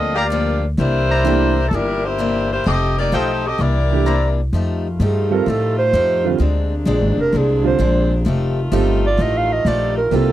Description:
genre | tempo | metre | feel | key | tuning
jazz, big band swing | 128 BPM | 4/4 | swing 67% on 8ths | F mixolydian | A4 = 440 Hz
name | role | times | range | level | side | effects
clear saxophone section | melody | 0.0-4.4 s | G3 to Eb5 | -20 LUFS | left 2 dB | none
picked steel-string acoustic guitar | accompaniment | 0.0-10.3 s | G2 to G4 | -24 LUFS | left 5 dB | none
upright bass | bass | 0.0-10.3 s | F1 to A2 | -19 LUFS | equal | none
warm trumpet section | stabs | 0.1-4.3 s | E4 to Bb5 | -22 LUFS | equal | none
warm baby grand piano | accompaniment | 1.2-10.3 s | D3 to A4 | -20 LUFS | right 10 dB | none
bright saxophone section | sustained chords | 4.5-10.3 s | C3 to F4 | -26 LUFS | left 2 dB | none
mellow clarinet | melody | 5.0-10.3 s | Ab4 to F5 | -19 LUFS | right 3 dB | none
room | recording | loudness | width
little or no reverb | dry, close 1970s-style studio recording | -15 LUFS | side -13 dB against mid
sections
0.0-4.5 A section; 4.5-10.3 B section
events
clarinet solo 4.5-10.3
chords
0.0 Gm7; 0.8 C9; 2.7 F9; 3.6 C9; 4.5 F9; 6.4 Bb9; 8.3 F9

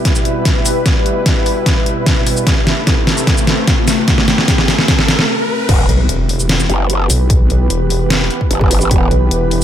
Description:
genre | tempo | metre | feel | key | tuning
heavy wobble dubstep | 149 BPM | 4/4 | half-time | E minor | A4 = 442 Hz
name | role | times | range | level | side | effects
supersaw pad | sustained chords | 0.0-9.6 s | B2 to B4 | -20 LUFS | right 2 dB | sidechain pumping, low-pass filter
riser and impact | sound effects | 2.0-7.3 s | none | -23 LUFS | equal | none
ethereal airy pad | texture | 0.0-9.6 s | A3 to E5 | -23 LUFS | left 1 dB | ensemble chorus, built-in reverb, sidechain pumping
dubstep drum kit | drums | 0.1-9.6 s | crash cymbal, hi-hat, shaker, snare drum | -15 LUFS | equal | none
electronic kick drum | drums | 0.1-9.0 s | none | -15 LUFS | equal | none
growl bass | bass | 5.7-9.1 s | E1 to F#1 | -15 LUFS | equal | chorus, overdrive
vowel-sweep wobble bass | bass | 5.9-9.6 s | E1 to B1 | -14 LUFS | equal | chorus, overdrive
room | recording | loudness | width
light reverb | none | -11 LUFS | side -10 dB against mid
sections
0.0-5.7 A section; 5.7-9.6 B section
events
build-up 0.0-5.7; drum fill 0.0-5.3; riser 2.0-5.7; stop 5.3-5.7; drop 5.7-9.6; impact 5.7-7.3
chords
0.0 Em; 2.5 Amadd9; 5.7 Em

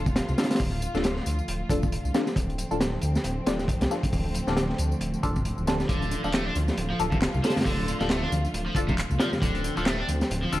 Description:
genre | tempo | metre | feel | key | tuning
breakbeat, breaks | 136 BPM | 4/4 | swing 57% on 16ths | D minor | A4 = 440 Hz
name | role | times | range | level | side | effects
dark studio string section | sustained chords | 0.0-10.6 s | D3 to F4 | -33 LUFS | equal | sidechain pumping
band-passed chord stab | stabs | 0.0-10.6 s | D4 to A4 | -33 LUFS | left 2 dB | phaser, lush chorus, vintage 12-bit sampler grit, tape echo
dark detuned saw bass | bass | 0.0-10.6 s | D1 to D2 | -29 LUFS | equal | none
crunchy breakbeat drum kit | drums | 0.1-10.6 s | hi-hat, kick drum, snare drum | -27 LUFS | equal | none
electronic tambourine and handclaps | drums | 0.1-10.6 s | none | -39 LUFS | left 1 dB | none
crunchy overdriven guitar | riff | 5.9-10.5 s | C3 to D4 | -32 LUFS | equal | vintage 12-bit sampler grit, tape echo
congas | percussion | 6.0-10.2 s | none | -37 LUFS | left 1 dB | none
room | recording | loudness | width
studio reverb | vinyl crackle | -24 LUFS | side -15 dB against mid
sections
0.0-10.6 A section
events
filter sweep on synth stab 0.0-10.6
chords
0.0 Dm

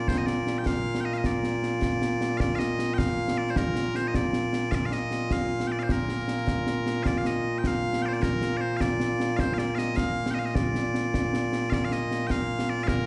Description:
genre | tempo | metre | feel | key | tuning
scottish traditional, Scottish pipe music | 103 BPM (dotted quarters) | 6/8 | straight | Bb major | A4 = 441 Hz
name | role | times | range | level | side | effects
loud bright bagpipes | melody | 0.0-13.1 s | Bb2 to G5 | -29 LUFS | equal | plate reverb, slapback echo
concert snare drum and concert bass drum | drums | 0.1-13.0 s | none | -31 LUFS | equal | slapback echo
room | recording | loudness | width
moderate club reverb, RT60 0.7 s | live gig heard through the venue's PA, club reverb, nothing above 10.7 kHz | -27 LUFS | mono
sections
0.0-7.1 A section; 7.1-13.1 A section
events
none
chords
none

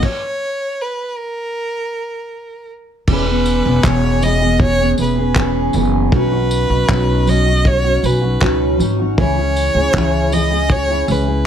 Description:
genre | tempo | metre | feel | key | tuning
acoustic pop | 79 BPM | 4/4 | straight | unclear | A4 = 440 Hz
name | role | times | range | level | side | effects
rich violin | melody | 0.0-11.5 s | A#4 to D#5 | -20 LUFS | right 1 dB | none
fingerpicked steel-string acoustic guitar | accompaniment | 0.0-11.5 s | B2 to G#4 | -18 LUFS | equal | double-tracked left and right
cloth-damped thuddy drum kit | drums | 0.0-11.3 s | crash cymbal, handclaps, kick drum, tambourine | -18 LUFS | equal | none
upright bass | bass | 3.1-11.5 s | E1 to C#2 | -18 LUFS | equal | none
group handclap | percussion | 3.8-10.1 s | none | -35 LUFS | left 5 dB | none
room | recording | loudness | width
light reverb | none | -14 LUFS | side -9 dB against mid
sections
0.0-3.1 A section; 3.1-11.5 B section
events
stop 0.0-3.1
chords
0.0 F# (rootless); 3.1 E6; 6.1 Badd9; 9.2 C#m

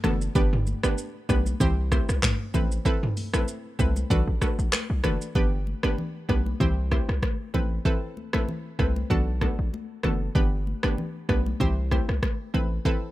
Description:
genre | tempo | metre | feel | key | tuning
afrobeats | 96 BPM | 4/4 | swing 55% on 16ths | G major | A4 = 440 Hz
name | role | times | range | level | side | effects
hollow square pluck | accompaniment | 0.0-13.1 s | B3 to C5 | -30 LUFS | right 3 dB | chorus
hard-hitting 808-style bass | bass | 0.0-12.8 s | F#1 to C2 | -26 LUFS | equal | none
deep house drum kit | drums | 0.0-13.0 s | handclaps, hi-hat, kick drum, rim click, shaker, toms | -26 LUFS | equal | overdrive, vintage 12-bit sampler grit
congas | percussion | 0.0-13.0 s | none | -33 LUFS | left 3 dB | none
room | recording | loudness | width
little or no reverb | rough home demo mix | -23 LUFS | side -16 dB against mid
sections
0.0-5.4 A section; 5.4-13.1 B section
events
hi-hats muted 5.4-13.1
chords
0.4 G; 1.6 C; 2.5 Amadd9; 4.1 Bm7; 5.4 G; 6.6 C; 7.5 Amadd9; 9.1 Bm7; 10.4 G; 11.6 C; 12.5 Amadd9

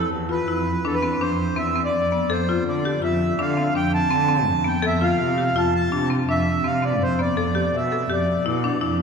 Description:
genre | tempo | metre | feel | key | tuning
contemporary instrumental, chamber music in an uneven meter | 165 BPM | 7/4 | straight | unclear | A4 = 439 Hz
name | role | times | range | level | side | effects
accordion | melody | 0.0-9.0 s | A4 to A5 | -24 LUFS | right 2 dB | none
buzzing marimba with hard mallets | arpeggios | 0.0-9.0 s | B3 to A4 | -24 LUFS | left 4 dB | none
muted cello | bass | 0.0-9.0 s | E2 to D3 | -24 LUFS | right 1 dB | none
room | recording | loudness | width
wet church reverb, RT60 3.2 s | recorded in a church or concert hall | -19 LUFS | side -6 dB against mid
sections
0.0-9.0 A section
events
none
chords
0.0 Am (rootless); 2.3 G9sus4/F (rootless); 7.4 Em7/F

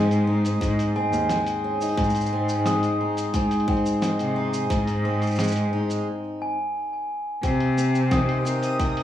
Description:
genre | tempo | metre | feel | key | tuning
folktronica | 88 BPM | 4/4 | straight | Ab major | A4 = 440 Hz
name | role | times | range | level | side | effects
hand-pumped harmonium | sustained chords | 0.0-9.0 s | C3 to Eb5 | -30 LUFS | right 2 dB | none
picked steel-string acoustic guitar | arpeggios | 0.0-9.0 s | Ab2 to G4 | -26 LUFS | equal | digital delay
clear cello | bass | 0.0-8.7 s | Eb2 to C3 | -25 LUFS | left 1 dB | none
lo-fi sampler-style drum kit | drums | 0.1-9.0 s | cabasa, hi-hat, snare drum | -32 LUFS | equal | studio reverb
electronic kick drum | drums | 0.6-8.9 s | none | -27 LUFS | equal | studio reverb
glockenspiel with rubber mallets | second line | 1.0-9.0 s | G5 to Eb6 | -29 LUFS | left 1 dB | digital delay
backwards swelling texture | texture | 8.4-9.0 s | Eb6 | -36 LUFS | right 4 dB | built-in reverb
room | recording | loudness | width
light reverb | rough home demo mix, studio reverb | -21 LUFS | side -11 dB against mid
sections
0.0-7.4 A section; 7.4-9.0 B section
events
break 6.1-7.4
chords
0.0 Ab; 7.4 Cm7

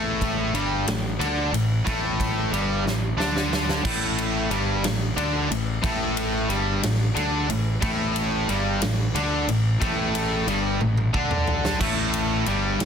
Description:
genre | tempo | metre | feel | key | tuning
quiet-loud alternative rock | 60 BPM (dotted quarters) | 6/8 | straight | unclear | A4 = 440 Hz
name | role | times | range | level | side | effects
crunchy overdriven guitar | riff | 0.0-12.9 s | G2 to D4 | -27 LUFS | left 7 dB | none
distorted electric guitar | riff | 0.0-12.9 s | G2 to D4 | -28 LUFS | right 10 dB | overdrive
high-gain distorted guitar | riff | 0.0-12.9 s | G2 to D4 | -29 LUFS | equal | distortion
fuzz fingered electric bass | bass | 0.0-12.9 s | G1 to D2 | -29 LUFS | right 1 dB | overdrive
big rock drum kit | drums | 0.2-12.9 s | crash cymbal, kick drum, ride cymbal, snare drum, toms | -28 LUFS | equal | none
room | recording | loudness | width
light reverb, studio ambience | dense, heavily limited modern master | -21 LUFS | side -7 dB against mid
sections
0.0-3.8 A section; 3.8-12.9 B section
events
drum fill 2.9-3.8, 10.8-11.8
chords
0.0 Gsus2

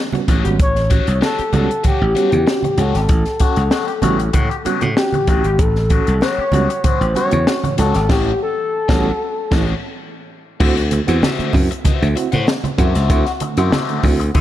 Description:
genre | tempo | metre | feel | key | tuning
funk | 96 BPM | 4/4 | straight | A mixolydian | A4 = 438 Hz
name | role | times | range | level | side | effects
biting overdriven guitar | accompaniment | 0.1-14.4 s | F#4 to F#5 | -24 LUFS | left 8 dB | phaser
overdriven reed electric piano | stabs | 0.1-14.4 s | A2 to F#4 | -24 LUFS | right 6 dB | fast tremolo
compact cocktail drum kit | drums | 0.1-14.4 s | crash cymbal, hi-hat, kick drum, snare drum | -18 LUFS | equal | none
congas | percussion | 0.1-14.4 s | none | -25 LUFS | right 4 dB | none
slap bass | bass | 0.3-14.4 s | G#1 to D3 | -17 LUFS | equal | none
expressive synth lead | melody | 0.6-9.6 s | G4 to C#5 | -20 LUFS | left 2 dB | chorus
room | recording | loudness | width
light reverb, small room ambience | dark, warm production | -14 LUFS | side -12 dB against mid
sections
0.0-10.6 A section; 10.6-14.4 B section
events
band accent 8.1-10.6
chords
0.0 A13; 10.6 D9

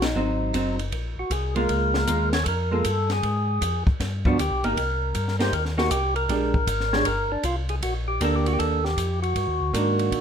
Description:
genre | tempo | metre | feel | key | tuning
soul jazz organ trio | 157 BPM | 4/4 | swing 66% on 8ths | Eb major | A4 = 440 Hz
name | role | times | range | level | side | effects
percussive tonewheel organ | melody | 0.0-10.2 s | D4 to Db5 | -26 LUFS | left 1 dB | overdrive, slow rotary speaker
mellow tonewheel organ | bass | 0.0-10.2 s | Gb1 to Bb2 | -26 LUFS | left 1 dB | slow rotary speaker
compact cocktail drum kit | drums | 0.0-10.2 s | hi-hat, kick drum, ride cymbal, snare drum | -29 LUFS | equal | none
vintage hollow-body jazz guitar | accompaniment | 0.2-10.2 s | Eb3 to G4 | -26 LUFS | right 2 dB | none
room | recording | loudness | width
moderate studio reverb, RT60 0.8 s | minimal, uncompressed stereo recording | -22 LUFS | side -8 dB against mid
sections
0.0-10.2 A section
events
band accent 0.0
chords
0.2 Ab7; 1.7 Db6; 3.2 Fm; 4.0 G7; 4.8 Cm7; 6.3 Bb13; 7.8 Ebmaj7

